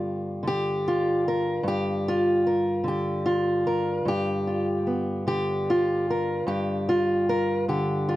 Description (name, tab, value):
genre	acoustic country blues, solo or duo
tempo	50 BPM (dotted quarters)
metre	12/8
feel	straight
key	G mixolydian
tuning	A4 = 441 Hz
part	fingerpicked steel-string acoustic guitar	solo	0.0-8.2 s	G2 to Bb4	-23 LUFS	equal	none
room	light reverb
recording	dark, warm production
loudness	-23 LUFS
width	side -15 dB against mid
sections	0.0-8.2 A section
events	none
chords	0.0 G7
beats	0.45 | 1.65 2.85 4.06 5.26 | 6.47 7.68